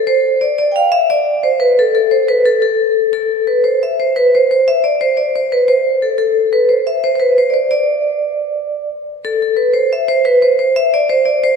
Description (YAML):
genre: celtic folk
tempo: 118 BPM (dotted quarters)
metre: 9/8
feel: straight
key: unclear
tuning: A4 = 441 Hz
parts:
  - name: vibraphone with medium hard mallets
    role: solo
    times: 0.0-11.6 s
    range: A4 to G5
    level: -12 LUFS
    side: equal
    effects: none
room: wet church reverb, RT60 2.7 s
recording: recorded in a church or concert hall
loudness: -12 LUFS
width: side -6 dB against mid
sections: 0.0-9.2 A section; 9.2-11.6 A section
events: none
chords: none